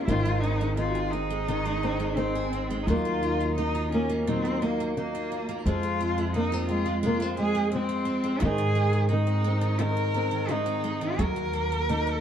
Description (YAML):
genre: acoustic folk-pop ballad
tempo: 86 BPM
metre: 4/4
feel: straight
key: unclear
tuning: A4 = 438 Hz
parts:
  - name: warm cello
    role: melody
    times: 0.0-12.2 s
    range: Bb3 to Bb4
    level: -29 LUFS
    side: equal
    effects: none
  - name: nylon-string guitar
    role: accompaniment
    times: 0.0-12.2 s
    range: Eb2 to Gb4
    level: -30 LUFS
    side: left 2 dB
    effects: none
  - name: picked steel-string acoustic guitar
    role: arpeggios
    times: 0.0-12.2 s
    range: Eb3 to Ab4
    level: -32 LUFS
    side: right 5 dB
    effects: none
  - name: upright bass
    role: bass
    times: 0.0-12.2 s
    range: Ab1 to Ab2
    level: -29 LUFS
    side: equal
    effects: none
room: moderate spring reverb, RT60 1.4 s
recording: heard from further back in the room, vinyl crackle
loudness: -24 LUFS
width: side -9 dB against mid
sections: 0.0-12.2 A section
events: none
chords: 0.1 Ab; 2.9 Ebmadd9; 5.7 Fm; 8.4 Ab; 11.2 Ebm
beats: | 0.07 0.77 1.47 2.17 | 2.87 3.57 4.27 4.97 | 5.66 6.35 7.04 7.73 | 8.42 9.11 9.80 10.49 | 11.19 11.88